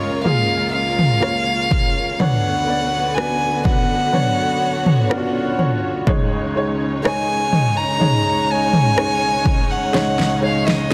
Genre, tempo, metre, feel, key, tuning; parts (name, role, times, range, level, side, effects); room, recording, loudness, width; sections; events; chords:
pop ballad; 62 BPM; 4/4; straight; A4 = 440 Hz
warm violin; melody; 0.0-10.9 s; C#5 to A#5; -23 LUFS; equal
clear upright piano; accompaniment; 0.0-10.9 s; C#2 to F#5; -25 LUFS; equal
dark studio string section; sustained chords; 0.0-10.9 s; D3 to C#5; -29 LUFS; equal
nylon-string guitar; arpeggios; 0.0-10.9 s; C#3 to B4; -30 LUFS; equal; tape echo
deep house drum kit; drums; 0.3-10.9 s; kick drum, rim click, snare drum, toms; -22 LUFS; equal; overdrive
moderate lush hall reverb, RT60 2.8 s; dense, heavily limited modern master; -18 LUFS; mono
0.0-10.9 A section
upright piano fill 4.6-6.1; drum fill 9.9-10.9
0.0 C#6; 2.2 Bmadd9/D; 6.1 C#sus2